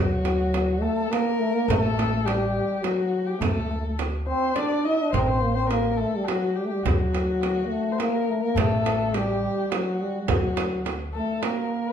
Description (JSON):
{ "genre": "Persian modal ensemble", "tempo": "105 BPM", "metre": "3/4", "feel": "straight", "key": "unclear", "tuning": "A4 = 441 Hz", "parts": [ { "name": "breathy trombone", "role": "melody", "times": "0.0-11.9 s", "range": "F#3 to Eb4+43c", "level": "-25 LUFS", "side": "left 1 dB", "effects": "none" }, { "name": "dark kamancheh", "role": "second line", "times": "0.0-11.9 s", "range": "F#4 to Eb5+45c", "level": "-30 LUFS", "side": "left 4 dB", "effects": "none" }, { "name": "upright bass", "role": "bass", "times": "0.0-11.2 s", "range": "A1 to D2", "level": "-28 LUFS", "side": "equal", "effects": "none" }, { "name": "frame drum", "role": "percussion", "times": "0.3-11.6 s", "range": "none", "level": "-29 LUFS", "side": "right 5 dB", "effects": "none" }, { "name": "tombak", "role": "percussion", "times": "0.3-11.8 s", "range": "none", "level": "-30 LUFS", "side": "left 1 dB", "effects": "none" } ], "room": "wet large studio reverb, RT60 0.9 s", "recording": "band playing live in one room, lossy compression artefacts", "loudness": "-22 LUFS", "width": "side -8 dB against mid", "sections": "0.0-11.9 A section", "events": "none", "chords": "none" }